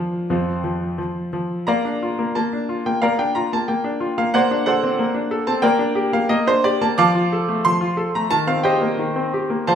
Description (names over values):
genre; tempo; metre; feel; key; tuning
classical-period piano sonatina; 90 BPM; 4/4; uneven beats, rubato; Bb major; A4 = 440 Hz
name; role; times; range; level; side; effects
bright baby grand piano; solo; 0.0-9.8 s; F2 to D6; -18 LUFS; equal; none
room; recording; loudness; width
moderate recital hall reverb, RT60 1.3 s; minimal, uncompressed stereo recording; -18 LUFS; side -8 dB against mid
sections
0.0-1.7 A section; 1.7-9.8 B section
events
none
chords
0.3 F5; 1.7 Bb; 4.3 D7/Bb; 5.6 Gm/Bb; 7.0 Dm/F; 8.3 Cm7/Eb